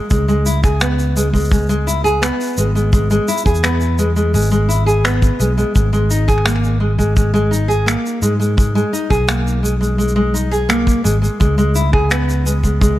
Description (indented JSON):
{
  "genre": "folktronica",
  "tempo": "85 BPM",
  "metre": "4/4",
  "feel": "straight",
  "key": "unclear",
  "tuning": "A4 = 442 Hz",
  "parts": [
    { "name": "nylon-string guitar", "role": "arpeggios", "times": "0.0-13.0 s", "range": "G#3 to G#4", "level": "-17 LUFS", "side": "equal", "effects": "digital delay" },
    { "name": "fingered electric bass", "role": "bass", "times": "0.1-13.0 s", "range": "G#1 to G#2", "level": "-17 LUFS", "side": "equal", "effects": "tube saturation" },
    { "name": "kick drum", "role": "drums", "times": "0.1-13.0 s", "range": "none", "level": "-15 LUFS", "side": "equal", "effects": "none" },
    { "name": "shaker and finger snaps", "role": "drums", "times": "0.1-13.0 s", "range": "none", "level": "-23 LUFS", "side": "equal", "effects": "none" }
  ],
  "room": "small room ambience",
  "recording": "none",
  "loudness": "-13 LUFS",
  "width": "side -14 dB against mid",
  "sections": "0.0-13.0 A section",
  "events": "none",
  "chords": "0.1 C#m7; 5.8 G#madd9; 11.4 C#7(no3)"
}